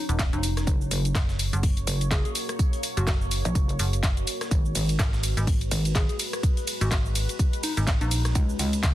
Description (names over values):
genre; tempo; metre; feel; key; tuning
bass house; 125 BPM; 4/4; swing 58% on 16ths; unclear; A4 = 440 Hz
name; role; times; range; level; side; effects
soft struck synth lead; melody; 0.0-8.4 s; Eb4 to Ab4; -36 LUFS; left 2 dB; chorus, tremolo, ping-pong delay
deep dark ambient pad; sustained chords; 0.0-8.9 s; Gb3 to Db5; -36 LUFS; equal; chorus, built-in reverb, sidechain pumping
downlifter; sound effects; 0.0-0.7 s; none; barely audible; none; none
metallic FM bass; bass; 0.1-8.9 s; Eb1 to Db2; -26 LUFS; equal; overdrive, sidechain pumping
house drum kit; drums; 0.1-8.9 s; handclaps, hi-hat, ride cymbal, rim click, shaker; -30 LUFS; equal; none
breakbeat sampler-style drum kit; drums; 0.2-8.9 s; hi-hat, snare drum, tambourine; -39 LUFS; right 2 dB; high-pass filter on perc, high-pass filter on snare, high-pass filter on hats
electronic kick drum; drums; 0.2-8.9 s; none; -24 LUFS; equal; none
metallic wobble bass; bass; 0.7-8.8 s; Gb1 to Db2; -26 LUFS; equal; chorus, overdrive, sidechain pumping
room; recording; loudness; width
digital ambience; dense, heavily limited modern master; -22 LUFS; side -14 dB against mid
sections
0.0-8.9 A section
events
none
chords
0.0 Ebm7; 0.7 Gb; 4.5 Abm7; 8.4 Db